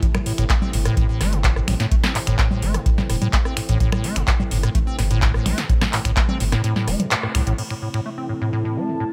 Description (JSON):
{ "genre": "acid house", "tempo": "127 BPM", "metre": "4/4", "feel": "straight", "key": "A minor", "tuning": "A4 = 441 Hz", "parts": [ { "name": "warbly tape-like pad", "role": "sustained chords", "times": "0.0-9.1 s", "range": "C3 to E4", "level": "-34 LUFS", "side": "equal", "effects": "chorus, built-in reverb, sidechain pumping" }, { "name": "acid bass, square", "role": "riff", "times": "0.0-9.0 s", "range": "A2 to C4", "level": "-26 LUFS", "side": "equal", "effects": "subtle chorus, vintage 12-bit sampler grit, sidechain pumping, delay" }, { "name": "saturated sub bass", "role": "bass", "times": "0.0-7.5 s", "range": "E1 to C2", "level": "-25 LUFS", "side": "equal", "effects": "sidechain pumping" }, { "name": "electro analog drum machine", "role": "drums", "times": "0.0-8.0 s", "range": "congas, crash cymbal, finger snaps, handclaps, hi-hat, rim click, snare drum", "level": "-26 LUFS", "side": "equal", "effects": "studio reverb" }, { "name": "electronic kick drum", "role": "drums", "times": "0.0-6.3 s", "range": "none", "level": "-22 LUFS", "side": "equal", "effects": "studio reverb" }, { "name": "warbly tape-like pad", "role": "texture", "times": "7.9-9.1 s", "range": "C4 to A5", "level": "-33 LUFS", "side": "equal", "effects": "chorus, built-in reverb, phaser, sidechain pumping" } ], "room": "little or no reverb", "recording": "none", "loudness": "-20 LUFS", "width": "mono", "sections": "0.0-7.6 A section; 7.6-9.1 B section", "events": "drop 0.0-7.6; kick drops out 6.6-7.6; band accent 7.1; filter sweep on acid bass 7.6-9.1", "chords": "0.0 Am" }